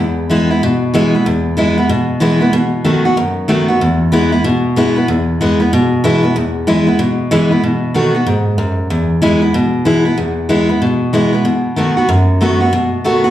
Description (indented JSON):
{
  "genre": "rock",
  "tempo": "188 BPM",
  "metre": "4/4",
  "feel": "swing 63% on 8ths",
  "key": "E major",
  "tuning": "A4 = 439 Hz",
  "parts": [
    { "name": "picked steel-string acoustic guitar", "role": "solo", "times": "0.0-13.3 s", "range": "E2 to F#4", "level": "-11 LUFS", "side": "equal", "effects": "slapback echo, analog delay" }
  ],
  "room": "moderate club reverb, RT60 0.7 s",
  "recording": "live gig heard through the venue's PA, club reverb",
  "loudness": "-11 LUFS",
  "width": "side -12 dB against mid",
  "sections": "0.0-10.2 A section; 10.2-13.3 B section",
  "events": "none",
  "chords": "0.0 E; 2.5 B7; 3.8 E; 7.6 B7; 8.9 E; 11.5 B7"
}